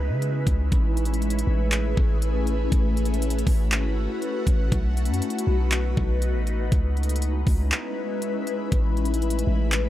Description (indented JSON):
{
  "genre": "hip hop, atmospheric cloud-rap",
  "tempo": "120 BPM",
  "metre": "4/4",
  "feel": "half-time",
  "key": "A lydian",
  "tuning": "A4 = 440 Hz",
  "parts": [
    { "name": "ethereal airy pad", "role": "sustained chords", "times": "0.0-9.9 s", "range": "G#3 to B4", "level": "-28 LUFS", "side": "left 2 dB", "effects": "ensemble chorus, built-in reverb, phaser, sidechain pumping" },
    { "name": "warm 808-style bass", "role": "bass", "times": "0.0-9.9 s", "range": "G#1 to C#3", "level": "-23 LUFS", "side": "equal", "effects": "none" },
    { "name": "trap drum kit", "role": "drums", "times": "0.2-9.8 s", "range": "handclaps, hi-hat, kick drum", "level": "-25 LUFS", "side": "equal", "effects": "none" }
  ],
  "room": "digital ambience",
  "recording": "none",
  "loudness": "-21 LUFS",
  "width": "side -13 dB against mid",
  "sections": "0.0-9.9 A section",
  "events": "break 7.7-8.7",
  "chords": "0.0 C#m9; 0.7 Amaj9; 4.7 B7; 6.7 C#m9; 8.7 Amaj9"
}